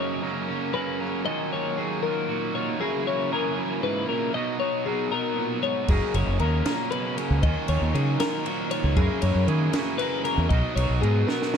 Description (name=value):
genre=math rock and midwest emo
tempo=78 BPM (dotted quarters)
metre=6/8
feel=straight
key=F# major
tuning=A4 = 441 Hz
part: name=twangy electric guitar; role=accompaniment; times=0.0-11.6 s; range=F#2 to A#4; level=-31 LUFS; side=right 8 dB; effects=spring reverb
part: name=twelve-string electric guitar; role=arpeggios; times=0.0-11.6 s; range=G#4 to D#5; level=-29 LUFS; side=left 9 dB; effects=wide subtle chorus
part: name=raw garage guitar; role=riff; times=0.0-11.6 s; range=F#2 to E4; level=-29 LUFS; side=right 1 dB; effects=overdrive, spring reverb
part: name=growling fingered electric bass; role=bass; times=5.9-11.2 s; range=F#1 to D#3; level=-23 LUFS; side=equal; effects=overdrive
part: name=compact cocktail drum kit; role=drums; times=5.9-11.6 s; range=crash cymbal, kick drum, ride cymbal, snare drum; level=-29 LUFS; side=equal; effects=none
room=little or no reverb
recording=dark, warm production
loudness=-23 LUFS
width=side -7 dB against mid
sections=0.0-11.6 A section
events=drum fill 11.3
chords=0.0 F#6; 1.3 D#m9; 2.8 F#9; 4.3 Bmaj9; 5.9 F#69; 7.4 D#m9; 9.0 F#9; 10.5 Bmaj9